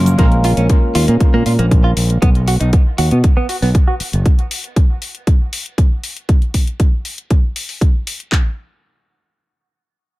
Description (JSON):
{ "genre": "nu-disco, nu disco", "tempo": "118 BPM", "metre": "4/4", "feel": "straight", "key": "Bb minor", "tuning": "A4 = 440 Hz", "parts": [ { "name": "tine electric piano", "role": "accompaniment", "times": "0.0-2.2 s", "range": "Db3 to Bb4", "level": "-21 LUFS", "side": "equal", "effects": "phaser, sidechain pumping, low-pass filter, dub echo" }, { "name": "overdriven fingered electric bass", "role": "bass", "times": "0.0-4.2 s", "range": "F#1 to B2", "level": "-14 LUFS", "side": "equal", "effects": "tube saturation" }, { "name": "electronic hi-hat and cabasa", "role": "drums", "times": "0.1-8.3 s", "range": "none", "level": "-26 LUFS", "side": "left 3 dB", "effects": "dub echo" }, { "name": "direct-recorded clean electric guitar", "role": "riff", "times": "0.2-3.9 s", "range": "Bb3 to F#4", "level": "-23 LUFS", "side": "right 2 dB", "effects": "wide subtle chorus, low-pass filter, dub echo" }, { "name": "house drum kit", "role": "drums", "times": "0.2-8.4 s", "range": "handclaps, kick drum", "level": "-12 LUFS", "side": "equal", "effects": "none" } ], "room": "digital ambience", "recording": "echo-heavy mix", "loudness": "-12 LUFS", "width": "side -19 dB against mid", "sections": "0.2-8.3 A section; 8.3-10.2 B section", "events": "filter sweep on clean electric guitar 0.2-4.3; filter sweep on tine electric piano 0.2-2.2", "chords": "0.2 Bbm7; 2.2 B5; 4.3 N.C.", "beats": "| 0.19 0.69 1.20 1.71 | 2.22 2.73 3.24 3.75 | 4.25 4.76 5.27 5.78 | 6.29 6.80 7.30 7.81 | 8.32" }